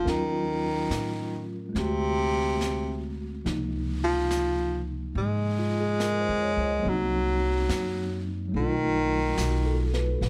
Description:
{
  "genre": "jazz ballad",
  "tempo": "71 BPM",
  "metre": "4/4",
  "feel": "swing 66% on 8ths",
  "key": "unclear",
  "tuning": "A4 = 440 Hz",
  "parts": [
    { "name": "warm baritone saxophone", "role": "melody", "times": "0.0-9.9 s", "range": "C3 to Ab3", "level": "-29 LUFS", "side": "equal", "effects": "none" },
    { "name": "mellow tine electric piano", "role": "accompaniment", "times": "0.0-10.3 s", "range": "C3 to Eb5", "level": "-34 LUFS", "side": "equal", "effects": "none" },
    { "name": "upright bass", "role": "bass", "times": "0.1-10.3 s", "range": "Bb1 to A2", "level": "-33 LUFS", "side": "equal", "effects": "none" },
    { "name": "jazz brush drum kit", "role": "drums", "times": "0.1-10.3 s", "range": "brushed snare drum, hi-hat, snare drum", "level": "-41 LUFS", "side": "equal", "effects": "none" }
  ],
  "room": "light reverb",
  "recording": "none",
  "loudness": "-27 LUFS",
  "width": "mono",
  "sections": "0.0-10.3 A section",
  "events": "none",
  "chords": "0.1 Ebm7; 1.8 D7#11; 3.5 Dbmaj13; 6.8 Cm7b5; 8.5 B7#11",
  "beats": "| 0.07 0.91 1.76 2.61 | 3.46 4.30 5.15 6.00 | 6.85 7.69 8.54 9.38 | 10.22"
}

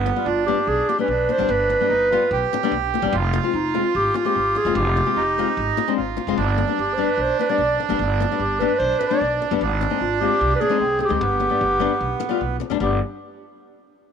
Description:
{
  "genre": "klezmer",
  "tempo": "148 BPM",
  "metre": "4/4",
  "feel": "straight",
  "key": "G phrygian dominant",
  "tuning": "A4 = 440 Hz",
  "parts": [
    { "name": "accordion", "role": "second line", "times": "0.0-13.0 s", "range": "B3 to G4", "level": "-24 LUFS", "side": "right 11 dB", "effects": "none" },
    { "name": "upright bass", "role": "bass", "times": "0.0-13.0 s", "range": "F1 to D2", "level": "-26 LUFS", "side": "right 1 dB", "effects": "none" },
    { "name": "flamenco guitar", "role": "accompaniment", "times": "0.1-13.0 s", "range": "G3 to G4", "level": "-25 LUFS", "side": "left 14 dB", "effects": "none" },
    { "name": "dark clarinet", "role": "melody", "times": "0.3-13.0 s", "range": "Eb4 to D5", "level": "-21 LUFS", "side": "equal", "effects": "slapback echo" }
  ],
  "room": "light reverb, studio reverb",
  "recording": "1960s-style stereo with parts hard left and right",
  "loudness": "-18 LUFS",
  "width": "side -7 dB against mid",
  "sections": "0.0-12.8 A section; 12.8-14.1 B section",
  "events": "speeding up 0.0-14.1",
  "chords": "0.0 G; 3.1 Fm; 6.4 G; 9.6 Ab; 11.2 G",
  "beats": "0.26 0.67 1.08 | 1.49 1.90 2.31 2.72 | 3.13 3.54 3.95 4.36 | 4.76 5.17 5.58 5.98 | 6.39 6.79 7.20 7.60 | 8.00 8.41 8.81 9.21 | 9.62 10.02 10.42 10.82 | 11.22 11.62 12.02 12.41 | 12.81"
}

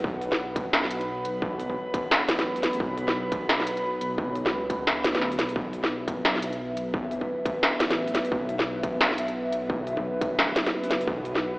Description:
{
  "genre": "half-time drum and bass",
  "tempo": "174 BPM",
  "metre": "4/4",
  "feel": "swing 60% on 16ths, half-time",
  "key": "unclear",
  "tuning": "A4 = 444 Hz",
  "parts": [
    { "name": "dark analog pad", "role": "sustained chords", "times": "0.0-11.6 s", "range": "F#3 to B5", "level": "-30 LUFS", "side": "equal", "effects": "chorus, phaser, sidechain pumping" },
    { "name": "dark detuned saw bass", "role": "bass", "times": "0.0-11.6 s", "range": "F#1 to D2", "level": "-35 LUFS", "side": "equal", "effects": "tube saturation" },
    { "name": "electronic kick drum", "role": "drums", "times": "0.0-11.2 s", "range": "none", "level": "-32 LUFS", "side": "equal", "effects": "distortion" },
    { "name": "industrial drum kit", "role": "drums", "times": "0.2-11.4 s", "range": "hi-hat, snare drum", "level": "-24 LUFS", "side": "equal", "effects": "none" }
  ],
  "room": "light reverb",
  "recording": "played on a big sound system in a bare room, stone room reverb, AM radio sound",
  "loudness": "-24 LUFS",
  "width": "side -23 dB against mid",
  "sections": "0.0-11.6 A section",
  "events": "none",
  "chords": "0.0 B5",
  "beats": "| 0.04 0.39 0.73 1.08 | 1.42 1.77 2.11 2.46 | 2.80 3.15 3.49 3.84 | 4.18 4.53 4.87 5.21 | 5.56 5.91 6.25 6.59 | 6.94 7.28 7.63 7.97 | 8.32 8.66 9.01 9.35 | 9.70 10.04 10.39 10.73 | 11.08 11.42"
}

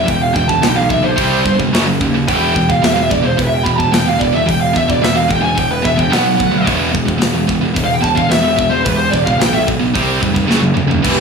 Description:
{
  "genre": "heavy metal",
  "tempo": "109 BPM",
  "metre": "4/4",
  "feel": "straight",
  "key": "E minor",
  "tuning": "A4 = 440 Hz",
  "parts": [
    { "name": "bluesy overdriven lead guitar", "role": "melody", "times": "0.0-9.6 s", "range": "B4 to B5", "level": "-17 LUFS", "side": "right 1 dB", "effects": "distortion, tape echo" },
    { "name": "high-gain distorted guitar", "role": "riff", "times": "0.0-11.2 s", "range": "E2 to C4", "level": "-16 LUFS", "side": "right 1 dB", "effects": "distortion" },
    { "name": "fuzz picked electric bass", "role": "bass", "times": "0.0-11.2 s", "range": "E1 to D#2", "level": "-19 LUFS", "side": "equal", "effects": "overdrive" },
    { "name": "tight metal drum kit", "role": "drums", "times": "0.1-11.2 s", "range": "crash cymbal, hi-hat, kick drum, snare drum, toms", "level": "-20 LUFS", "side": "left 1 dB", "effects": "none" },
    { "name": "brassy analog pad", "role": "sustained chords", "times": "11.0-11.2 s", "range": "E3 to B4", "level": "-18 LUFS", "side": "right 1 dB", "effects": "chorus" }
  ],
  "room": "light reverb, small room ambience",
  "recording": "studio reverb",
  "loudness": "-12 LUFS",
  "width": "side -5 dB against mid",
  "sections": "0.0-11.0 A section",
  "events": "lead electric guitar solo 0.0-11.0; drum fill 10.5-11.0",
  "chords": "0.0 Em; 1.2 C5; 1.7 F#5; 2.3 E5; 6.1 B5; 6.7 E5; 9.9 C5; 10.5 F#5",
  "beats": "| 0.08 0.63 1.18 1.73 | 2.27 2.82 3.37 3.92 | 4.47 5.02 5.57 6.12 | 6.67 7.21 7.76 8.31 | 8.86 9.40 9.95 10.49 | 11.04"
}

